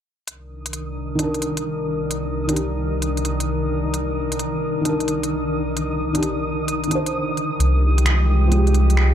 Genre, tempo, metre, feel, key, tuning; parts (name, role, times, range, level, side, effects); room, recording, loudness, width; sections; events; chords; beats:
future garage; 131 BPM; 4/4; swing 67% on 16ths; C minor; A4 = 439 Hz
warbly tape-like pad; sustained chords; 0.3-9.1 s; C2 to Bb4; -24 LUFS; left 1 dB; chorus, built-in reverb
organic electronic drum kit; drums; 0.3-9.1 s; finger snaps, hi-hat; -27 LUFS; equal
flickering grainy texture; texture; 0.6-9.1 s; Eb3 to Eb6; -29 LUFS; right 1 dB; built-in reverb
felt-muted upright piano; accompaniment; 1.2-9.1 s; Eb3 to C5; -25 LUFS; equal; low-pass filter, tape echo
dark detuned saw bass; bass; 7.6-9.1 s; C2; -15 LUFS; equal
moderate recital hall reverb, RT60 1.4 s, digital ambience; dark, warm production; -19 LUFS; side -10 dB against mid
0.3-9.1 A section
0.3 Cm9; 7.6 Fmadd9/C
| 0.27 0.73 1.19 1.65 | 2.10 2.56 3.02 3.48 | 3.94 4.39 4.85 5.31 | 5.77 6.23 6.68 7.14 | 7.60 8.06 8.52 8.97